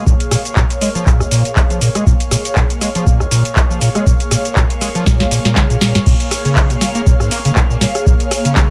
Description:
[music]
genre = acid house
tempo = 120 BPM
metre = 4/4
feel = swing 56% on 16ths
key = unclear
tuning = A4 = 440 Hz
[part]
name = overdriven acid bass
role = riff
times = 0.0-8.7 s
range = Bb1 to Bb3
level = -20 LUFS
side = equal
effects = ensemble chorus, sidechain pumping, dub echo
[part]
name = airy breathy pad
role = texture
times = 0.0-8.7 s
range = Bb3 to F5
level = -24 LUFS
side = equal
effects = chorus, phaser, sidechain pumping
[part]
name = booming analog drum machine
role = drums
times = 0.1-8.7 s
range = crash cymbal, handclaps, hi-hat, rim click, shaker, snare drum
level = -20 LUFS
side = equal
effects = none
[part]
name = electronic kick drum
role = drums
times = 0.1-8.7 s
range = none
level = -16 LUFS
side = equal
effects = none
[sound]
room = light reverb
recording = none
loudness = -14 LUFS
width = mono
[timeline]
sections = 0.0-6.1 A section; 6.1-8.7 B section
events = drum fill 5.1-6.1; drop 6.1-8.7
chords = 0.0 Bbm7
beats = | 0.06 0.56 1.06 1.56 | 2.06 2.56 3.06 3.56 | 4.06 4.56 5.06 5.56 | 6.06 6.56 7.06 7.56 | 8.06 8.56

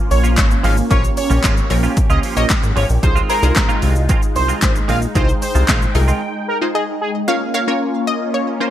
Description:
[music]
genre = dance-pop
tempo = 113 BPM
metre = 4/4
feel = straight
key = Bb dorian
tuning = A4 = 440 Hz
[part]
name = filtered supersaw swell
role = sustained chords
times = 0.0-8.7 s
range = Ab3 to G5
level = -23 LUFS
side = equal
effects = phaser, sidechain pumping
[part]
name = octave-doubled lead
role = melody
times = 0.1-7.1 s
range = Ab4 to F5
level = -22 LUFS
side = right 1 dB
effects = chorus, phaser, sidechain pumping
[part]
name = direct-recorded clean electric guitar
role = riff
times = 0.1-6.2 s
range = Eb3 to F4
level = -25 LUFS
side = right 6 dB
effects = analog chorus
[part]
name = chorused synth bass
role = bass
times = 0.1-6.1 s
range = Ab1 to Db2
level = -17 LUFS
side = equal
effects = sidechain pumping
[part]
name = house drum kit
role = drums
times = 0.1-6.2 s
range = handclaps, hi-hat, kick drum, shaker, snare drum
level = -17 LUFS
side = equal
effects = gated reverb
[part]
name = group handclap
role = percussion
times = 0.4-5.8 s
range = none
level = -30 LUFS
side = left 6 dB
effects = none
[part]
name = punchy chord stab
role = accompaniment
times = 0.9-8.7 s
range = Bb3 to Db5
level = -23 LUFS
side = left 1 dB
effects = chorus, sidechain pumping
[part]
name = analog pluck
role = melody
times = 6.8-8.7 s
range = Db5 to F5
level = -22 LUFS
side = left 2 dB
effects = chorus, digital delay
[sound]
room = little or no reverb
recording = bright 1980s-style digital production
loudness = -14 LUFS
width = side -12 dB against mid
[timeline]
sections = 0.0-7.3 A section; 7.3-8.7 B section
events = break 6.2-7.3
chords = 0.0 Bbm; 3.0 Fm7; 7.3 Bbm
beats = 0.37 | 0.91 1.44 1.97 2.50 | 3.03 3.56 4.09 4.62 | 5.15 5.68 6.21 6.75 | 7.28 7.81 8.34

